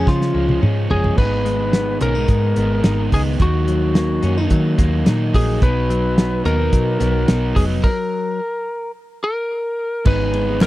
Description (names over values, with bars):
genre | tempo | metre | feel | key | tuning
jangly indie pop | 108 BPM | 4/4 | straight | unclear | A4 = 440 Hz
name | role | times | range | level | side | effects
lightly driven lead guitar | melody | 0.0-10.7 s | E#4 to B4 | -22 LUFS | left 1 dB | none
crunchy overdriven guitar | accompaniment | 0.0-10.7 s | G#2 to D#4 | -24 LUFS | right 5 dB | none
direct-recorded clean electric guitar | arpeggios | 0.0-10.7 s | G#2 to D#4 | -24 LUFS | left 6 dB | none
vintage muted picked electric bass | bass | 0.0-10.7 s | E#1 to D#3 | -20 LUFS | equal | none
cloth-damped thuddy drum kit | drums | 0.1-10.7 s | crash cymbal, hi-hat, kick drum, ride cymbal, snare drum, toms | -17 LUFS | equal | none
group handclap | percussion | 10.6-10.7 s | none | -30 LUFS | left 3 dB | none
room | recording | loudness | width
little or no reverb | dry, close 1970s-style studio recording | -16 LUFS | side -16 dB against mid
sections
0.0-1.2 A section; 1.2-10.1 B section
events
drum fill 0.1-1.2; stop 7.8-10.1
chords
0.0 C#; 1.2 G#m; 3.4 D#m; 5.6 B; 7.8 N.C.; 10.1 G#m